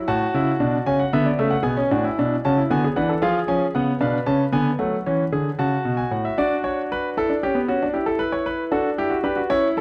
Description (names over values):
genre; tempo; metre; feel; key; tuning
classical, baroque-style 4-part fugue for grand piano; 76 BPM (dotted quarters); 12/8; straight; D major from 6.4 s; A4 = 440 Hz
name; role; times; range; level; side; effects
warm concert grand piano; solo; 0.0-9.8 s; A2 to A5; -22 LUFS; equal; none
room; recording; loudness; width
moderate recital hall reverb, RT60 1.3 s; close, detailed microphones, vinyl crackle; -22 LUFS; mono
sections
0.0-6.4 A section; 6.4-9.8 B section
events
none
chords
0.1 F#m/A; 3.2 Fdim7; 4.8 F#m; 6.4 D; 8.0 Em7